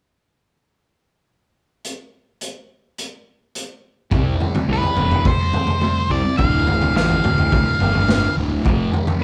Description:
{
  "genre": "psychedelic rock",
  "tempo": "106 BPM",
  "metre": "4/4",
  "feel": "straight",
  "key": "unclear",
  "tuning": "A4 = 440 Hz",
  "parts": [
    { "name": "crunchy breakbeat drum kit", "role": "drums", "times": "1.8-9.2 s", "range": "hi-hat, kick drum, snare drum, toms", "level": "-22 LUFS", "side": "equal", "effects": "none" },
    { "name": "thick fuzz guitar", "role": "riff", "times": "4.1-9.2 s", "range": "D2 to C4", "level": "-27 LUFS", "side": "equal", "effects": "distortion, phaser" },
    { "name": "fuzz picked electric bass", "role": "bass", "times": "4.1-8.9 s", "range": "D1 to C2", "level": "-24 LUFS", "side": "equal", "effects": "overdrive" },
    { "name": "octave-fuzz lead guitar", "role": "melody", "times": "4.7-8.3 s", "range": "B4 to F5", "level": "-24 LUFS", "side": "equal", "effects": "distortion" }
  ],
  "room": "moderate large studio reverb, RT60 1.0 s",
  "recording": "band playing live in one room",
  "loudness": "-18 LUFS",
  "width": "mono",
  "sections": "1.8-4.1 A section; 4.1-9.2 B section",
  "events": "none",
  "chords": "1.8 N.C.; 4.1 Cmaj7(no3); 6.4 Dm; 8.7 F5"
}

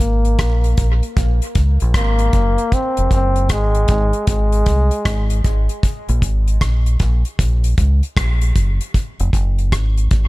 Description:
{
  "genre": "dub reggae",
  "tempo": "77 BPM",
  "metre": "4/4",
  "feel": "swing 64% on 16ths",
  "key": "unclear",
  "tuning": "A4 = 440 Hz",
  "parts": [
    { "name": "brilliant trombone", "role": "melody", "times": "0.0-5.4 s", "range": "Ab3 to C4", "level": "-22 LUFS", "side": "equal", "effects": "low-pass filter, dub echo" },
    { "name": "deep dub fingered electric bass", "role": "bass", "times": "0.0-10.3 s", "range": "F1 to Db2", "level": "-16 LUFS", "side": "equal", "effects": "none" },
    { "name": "damped 70s drum kit", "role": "drums", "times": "0.0-10.3 s", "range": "hi-hat, kick drum, rim click", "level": "-19 LUFS", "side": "equal", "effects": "none" }
  ],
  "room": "studio ambience",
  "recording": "none",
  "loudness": "-14 LUFS",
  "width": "side -20 dB against mid",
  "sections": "0.0-10.3 A section",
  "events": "none",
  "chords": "0.0 Bb7(no3); 2.7 Fm (rootless); 5.8 N.C."
}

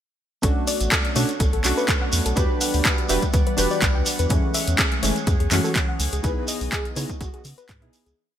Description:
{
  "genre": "deep house",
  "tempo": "124 BPM",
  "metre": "4/4",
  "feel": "swing 54% on 16ths",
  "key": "B dorian",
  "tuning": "A4 = 439 Hz",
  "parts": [
    { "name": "warbly tape-like pad", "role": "sustained chords", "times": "0.4-8.2 s", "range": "D3 to F#5", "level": "-33 LUFS", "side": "left 1 dB", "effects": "chorus, built-in reverb, sidechain pumping" },
    { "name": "soft round pluck", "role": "arpeggios", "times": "0.4-8.1 s", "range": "G#4 to G5", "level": "-31 LUFS", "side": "left 4 dB", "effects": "chorus, sidechain pumping, ping-pong delay" },
    { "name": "warm analog keys", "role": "stabs", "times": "0.4-8.2 s", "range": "E3 to B4", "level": "-26 LUFS", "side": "right 1 dB", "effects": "chorus, sidechain pumping, ping-pong delay" },
    { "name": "warm sub bass", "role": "bass", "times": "0.4-8.1 s", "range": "E1 to C#3", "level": "-24 LUFS", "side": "equal", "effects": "sidechain pumping" },
    { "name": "electronic kick drum", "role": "drums", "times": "0.4-7.8 s", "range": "none", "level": "-23 LUFS", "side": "equal", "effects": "overdrive" },
    { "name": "punchy analog drum machine", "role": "drums", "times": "0.4-8.2 s", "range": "handclaps, hi-hat", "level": "-25 LUFS", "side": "left 1 dB", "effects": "overdrive" },
    { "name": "shekere", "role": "percussion", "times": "0.4-8.2 s", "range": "none", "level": "-30 LUFS", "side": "right 4 dB", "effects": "none" },
    { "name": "breathy flute-like synth lead", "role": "melody", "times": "5.5-7.4 s", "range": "F#4 to B4", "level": "-33 LUFS", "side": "left 2 dB", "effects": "wide subtle chorus, ping-pong delay" }
  ],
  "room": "light reverb, digital ambience",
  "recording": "bright 1980s-style digital production",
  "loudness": "-19 LUFS",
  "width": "side -10 dB against mid",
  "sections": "0.4-8.2 drop",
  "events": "drop 0.4-8.2; fade-out 5.6-8.2",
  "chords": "0.4 Bm9; 2.4 Em9; 4.3 F#m9; 6.0 C#m9"
}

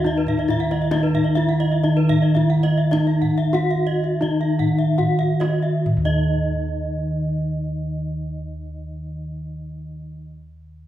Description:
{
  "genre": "Balinese gamelan",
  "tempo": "65-139 BPM",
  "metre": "4/4",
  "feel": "straight",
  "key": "unclear",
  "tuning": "A4 = 438 Hz",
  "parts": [
    { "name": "gamelan-type bronze metallophone", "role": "melody", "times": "0.0-10.3 s", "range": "Eb4 to Gb4-30c", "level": "-25 LUFS", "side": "left 2 dB", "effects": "none" },
    { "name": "gamelan-type bronze metallophone", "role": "accompaniment", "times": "0.0-10.3 s", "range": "Eb3", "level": "-23 LUFS", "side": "right 1 dB", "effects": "none" },
    { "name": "gamelan-type bronze metallophone", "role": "arpeggios", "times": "0.0-10.3 s", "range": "Eb5 to Gb5-30c", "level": "-29 LUFS", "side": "left 2 dB", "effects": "none" },
    { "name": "gamelan-type bossed gongs", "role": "bass", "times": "0.0-10.2 s", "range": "Eb2 to Fb4+20c", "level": "-25 LUFS", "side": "equal", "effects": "none" },
    { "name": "gamelan-type bronze metallophone", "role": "arpeggios", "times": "0.2-10.3 s", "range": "Cb5-20c to Gb5-30c", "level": "-30 LUFS", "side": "right 6 dB", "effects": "none" },
    { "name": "kendang", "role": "percussion", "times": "0.2-6.3 s", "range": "none", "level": "-28 LUFS", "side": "equal", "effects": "none" }
  ],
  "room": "wet recital hall reverb, RT60 1.5 s",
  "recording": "heard from further back in the room",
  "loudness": "-18 LUFS",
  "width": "side -12 dB against mid",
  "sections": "0.0-5.9 A section; 5.9-10.9 B section",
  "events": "slowing down 0.9-5.9",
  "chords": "none"
}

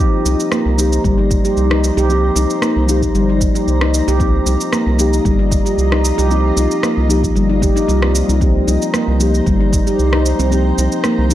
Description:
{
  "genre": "organic downtempo",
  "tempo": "114 BPM",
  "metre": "4/4",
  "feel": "swing 53% on 16ths",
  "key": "C minor",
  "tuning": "A4 = 440 Hz",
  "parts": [
    { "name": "muted felt-like synth keys", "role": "accompaniment", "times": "0.0-11.3 s", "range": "F3 to G4", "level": "-21 LUFS", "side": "left 2 dB", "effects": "chorus, sidechain pumping, analog delay" },
    { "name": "granular cloud pad", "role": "sustained chords", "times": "0.0-11.3 s", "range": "Eb4 to Bb5", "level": "-25 LUFS", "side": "right 1 dB", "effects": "built-in reverb, vintage 12-bit sampler grit, sidechain pumping" },
    { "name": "handpan", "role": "arpeggios", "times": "0.0-11.3 s", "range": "G3 to G4", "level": "-18 LUFS", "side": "equal", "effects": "analog delay" },
    { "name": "electronic shaker and rim click", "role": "drums", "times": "0.0-11.3 s", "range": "none", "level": "-23 LUFS", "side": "right 1 dB", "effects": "studio reverb" },
    { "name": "round analog bass", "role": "bass", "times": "0.3-11.3 s", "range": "G1 to C2", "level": "-16 LUFS", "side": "equal", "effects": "none" },
    { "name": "electronic kick drum", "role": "drums", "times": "1.0-9.8 s", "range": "none", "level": "-17 LUFS", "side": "equal", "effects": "studio reverb" }
  ],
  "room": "digital ambience",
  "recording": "dry, gritty hardware recording, transformer saturation",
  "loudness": "-12 LUFS",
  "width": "side -12 dB against mid",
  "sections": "0.0-11.3 A section",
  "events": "none",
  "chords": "0.0 Cm7"
}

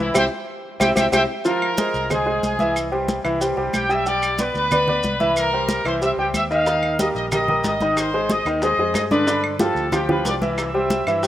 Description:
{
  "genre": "latin, salsa",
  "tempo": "184 BPM",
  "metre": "4/4",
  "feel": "straight",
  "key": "unclear",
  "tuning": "A4 = 443 Hz",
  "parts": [
    { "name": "bright trumpet section", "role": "melody", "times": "0.0-11.3 s", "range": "E4 to E6", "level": "-23 LUFS", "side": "equal", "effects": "none" },
    { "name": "clear baby grand piano", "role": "accompaniment", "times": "0.0-11.3 s", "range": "D3 to G5", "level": "-21 LUFS", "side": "equal", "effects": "none" },
    { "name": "fingered electric bass", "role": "bass", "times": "0.0-11.3 s", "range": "Ab1 to G2", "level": "-31 LUFS", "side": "equal", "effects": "none" },
    { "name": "congas", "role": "percussion", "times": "0.0-11.3 s", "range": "none", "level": "-28 LUFS", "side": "equal", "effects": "none" },
    { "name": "bongos", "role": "percussion", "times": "0.1-1.2, 6.7-11.3 s", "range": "none", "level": "-32 LUFS", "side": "left 2 dB", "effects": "none" },
    { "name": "maracas", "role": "percussion", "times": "0.1-11.3 s", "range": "none", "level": "-33 LUFS", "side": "right 1 dB", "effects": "none" },
    { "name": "claves", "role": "percussion", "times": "0.2-11.2 s", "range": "none", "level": "-29 LUFS", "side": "right 2 dB", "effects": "none" }
  ],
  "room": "moderate lush hall reverb, RT60 2.7 s",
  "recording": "rough home demo mix",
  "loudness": "-18 LUFS",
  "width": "side -12 dB against mid",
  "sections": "0.0-1.5 A section; 1.5-11.3 A section",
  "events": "band accent 0.2-1.5; drum fill 1.0-1.5",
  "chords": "0.2 C; 1.5 Fm; 2.8 C; 4.1 G/B; 5.4 C; 6.7 Eb; 8.0 Ab; 9.3 G7; 10.6 C"
}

